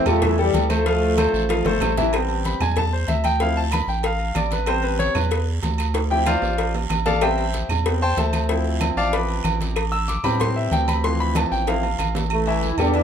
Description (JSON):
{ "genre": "latin, salsa", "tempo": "189 BPM", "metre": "4/4", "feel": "straight", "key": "A minor", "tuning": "A4 = 440 Hz", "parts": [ { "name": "warm trombone section", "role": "melody", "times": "0.0-1.9, 12.3-13.0 s", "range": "E3 to F4", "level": "-22 LUFS", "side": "equal", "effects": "none" }, { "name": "bright concert grand piano", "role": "accompaniment", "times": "0.1-13.0 s", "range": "E3 to E6", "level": "-23 LUFS", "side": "left 3 dB", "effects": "none" }, { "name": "saturated sub bass", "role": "bass", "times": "0.1-13.0 s", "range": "G1 to A2", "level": "-24 LUFS", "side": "right 1 dB", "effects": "none" }, { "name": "agogo bells and timbales", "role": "percussion", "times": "0.1-13.0 s", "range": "none", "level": "-28 LUFS", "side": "right 8 dB", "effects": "none" }, { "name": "claves", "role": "percussion", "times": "0.1-12.9 s", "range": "none", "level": "-34 LUFS", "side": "right 6 dB", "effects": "none" }, { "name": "congas", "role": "percussion", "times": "0.1-13.0 s", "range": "none", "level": "-30 LUFS", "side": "equal", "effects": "none" }, { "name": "guiro", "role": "percussion", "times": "0.1-13.0 s", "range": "none", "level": "-37 LUFS", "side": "right 7 dB", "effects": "none" }, { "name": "cowbell", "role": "percussion", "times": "0.2-12.3 s", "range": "none", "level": "-29 LUFS", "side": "left 5 dB", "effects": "none" } ], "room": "moderate studio reverb, RT60 0.5 s", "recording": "minimal, uncompressed stereo recording", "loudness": "-19 LUFS", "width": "side -8 dB against mid", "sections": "0.0-2.1 A section; 2.1-12.3 B section", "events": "drum fill 1.5-2.1, 6.0-7.2, 11.7-12.3; grand piano solo 2.1-12.3", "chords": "0.0 Am7; 0.9 Dm7; 2.1 Am7; 3.4 Dm7; 4.7 Am7; 6.0 Dm7; 7.2 Am7; 8.5 Dm7; 9.8 Am7; 11.0 Dm7; 12.3 A7(no3)", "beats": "0.22 0.54 | 0.86 1.18 1.50 1.81 | 2.13 2.45 2.77 3.09 | 3.40 3.72 4.04 4.36 | 4.68 5.00 5.32 5.63 | 5.95 6.27 6.59 6.91 | 7.22 7.54 7.86 8.18 | 8.50 8.81 9.13 9.45 | 9.77 10.09 10.40 10.72 | 11.04 11.36 11.68 11.99 | 12.31 12.63 12.95" }